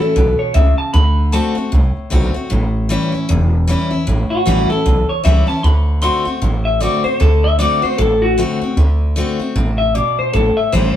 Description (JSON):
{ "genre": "rockabilly", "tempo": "153 BPM", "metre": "4/4", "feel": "swing 59% on 8ths", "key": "unclear", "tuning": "A4 = 440 Hz", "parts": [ { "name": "electric guitar through a small old amp", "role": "melody", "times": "0.0-1.7, 4.3-11.0 s", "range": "F#4 to C6", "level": "-17 LUFS", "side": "left 2 dB", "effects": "none" }, { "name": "picked steel-string acoustic guitar", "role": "accompaniment", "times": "0.0-11.0 s", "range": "E2 to F#4", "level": "-20 LUFS", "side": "left 2 dB", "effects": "none" }, { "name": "upright bass", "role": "bass", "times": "0.0-10.9 s", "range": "E1 to D2", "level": "-14 LUFS", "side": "right 1 dB", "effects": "none" } ], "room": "moderate large studio reverb, RT60 0.9 s", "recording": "band playing live in one room", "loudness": "-13 LUFS", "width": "side -11 dB against mid", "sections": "0.0-11.0 A section", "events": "none", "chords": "0.0 A; 0.9 D7; 2.5 A7; 5.6 D7; 10.3 A7", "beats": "0.16 0.55 | 0.94 1.33 1.73 2.12 | 2.51 2.90 3.29 3.68 | 4.08 4.47 4.86 5.25 | 5.64 6.03 6.42 6.81 | 7.21 7.60 7.99 8.38 | 8.77 9.16 9.56 9.95 | 10.34 10.73" }